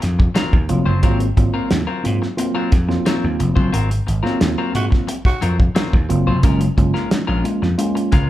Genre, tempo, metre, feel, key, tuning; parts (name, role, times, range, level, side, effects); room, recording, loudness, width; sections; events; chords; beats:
funk; 89 BPM; 4/4; straight; A4 = 440 Hz
electric guitar at the edge of break-up; accompaniment; 0.0-8.3 s; Gb3 to C5; -26 LUFS; left 4 dB
vintage slap bass; bass; 0.0-8.3 s; F1 to Ab2; -19 LUFS; equal
cloth-damped thuddy drum kit; drums; 0.0-8.3 s; hi-hat, kick drum, snare drum; -18 LUFS; equal
mellow tine electric piano; stabs; 0.7-8.1 s; Gb3 to F4; -21 LUFS; right 1 dB; medium stereo tremolo
growling tenor saxophone; second line; 4.8-5.5 s; Gb4; -26 LUFS; right 3 dB
moderate large studio reverb, RT60 0.8 s; band playing live in one room; -15 LUFS; side -14 dB against mid
0.0-8.3 A section
band accent 3.7-6.4
0.0 Ab13; 6.4 Gbmaj9
0.36 | 1.03 1.71 2.38 3.06 | 3.73 4.41 5.08 5.76 | 6.43 7.11 7.78